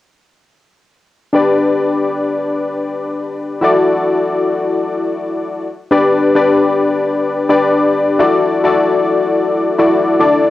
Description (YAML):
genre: pop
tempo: 105 BPM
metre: 4/4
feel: swing 55% on 16ths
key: unclear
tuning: A4 = 441 Hz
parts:
  - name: warm analog keys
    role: solo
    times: 1.3-10.5 s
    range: D4 to D5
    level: -12 LUFS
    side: left 2 dB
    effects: chorus, cassette tape
room: moderate small room reverb, RT60 0.5 s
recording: home recording on cassette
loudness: -12 LUFS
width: side -14 dB against mid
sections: 1.3-5.9 A section; 5.9-10.5 B section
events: none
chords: 1.3 G; 3.6 Dadd9; 5.6 N.C.; 5.9 G; 8.2 Dadd9